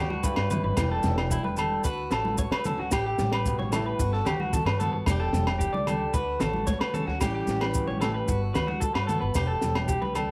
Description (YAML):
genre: highlife guitar band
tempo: 112 BPM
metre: 4/4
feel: straight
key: D major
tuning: A4 = 440 Hz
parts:
  - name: picked steel-string acoustic guitar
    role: accompaniment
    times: 0.0-10.3 s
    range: E2 to G4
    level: -36 LUFS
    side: equal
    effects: cassette tape
  - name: electric guitar through a small old amp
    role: arpeggios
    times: 0.0-10.3 s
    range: E4 to D5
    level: -32 LUFS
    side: equal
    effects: cassette tape, tape echo
  - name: upright bass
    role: bass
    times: 0.0-10.3 s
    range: E1 to D3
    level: -33 LUFS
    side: equal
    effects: none
  - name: congas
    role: percussion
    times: 0.1-10.3 s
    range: none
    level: -36 LUFS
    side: equal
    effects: none
  - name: compact cocktail drum kit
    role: drums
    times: 0.2-10.0 s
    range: kick drum, snare drum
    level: -33 LUFS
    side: equal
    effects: cassette tape
  - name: maracas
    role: percussion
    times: 0.2-10.3 s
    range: none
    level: -42 LUFS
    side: equal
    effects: none
  - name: agogo bells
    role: percussion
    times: 0.4-10.3 s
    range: none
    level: -37 LUFS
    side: equal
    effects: none
room: moderate spring reverb, RT60 1.8 s, small room ambience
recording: home recording on cassette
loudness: -27 LUFS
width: mono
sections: 0.0-10.3 A section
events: none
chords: 0.0 Gmaj7; 0.8 Em7; 1.8 Dmaj7; 2.9 A7(no3); 4.0 Gmaj7; 5.1 Em7; 6.1 Dmaj7; 7.2 A7; 8.3 Gmaj7; 9.3 Em